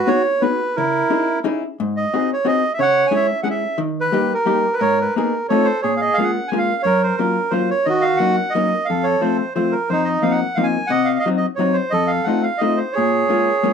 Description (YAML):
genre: musette waltz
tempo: 177 BPM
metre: 3/4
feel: swing 53% on 8ths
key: G# minor, Bb minor from 5.8 s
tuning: A4 = 440 Hz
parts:
  - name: bandoneon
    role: melody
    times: 0.0-13.7 s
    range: Eb4 to G#5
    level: -18 LUFS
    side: right 3 dB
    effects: none
  - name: vintage hollow-body jazz guitar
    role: accompaniment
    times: 0.1-13.7 s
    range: F2 to G#4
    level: -20 LUFS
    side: left 4 dB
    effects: none
room: moderate small room reverb, RT60 0.5 s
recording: none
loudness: -16 LUFS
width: side -7 dB against mid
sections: 0.0-5.8 A section; 5.8-13.7 B section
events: none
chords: 0.0 G#m7; 0.8 C#madd9; 1.8 G#7; 2.8 C#m; 3.8 D#; 4.8 G#madd9; 5.5 F7; 5.8 Bbm7; 6.8 Gbmaj7; 7.9 Ebm7; 8.9 F; 9.9 F7sus4; 10.9 Cdim; 11.9 F7; 13.0 Bbm7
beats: 0.08 0.42 | 0.75 1.09 1.43 | 1.77 2.11 2.44 | 2.78 3.12 3.46 | 3.79 4.13 4.46 | 4.80 5.14 5.48 | 5.82 6.16 6.50 | 6.84 7.18 7.52 | 7.86 8.20 8.54 | 8.88 9.22 9.56 | 9.90 10.24 10.59 | 10.93 11.27 11.61 | 11.95 12.28 12.62 | 12.96 13.31 13.65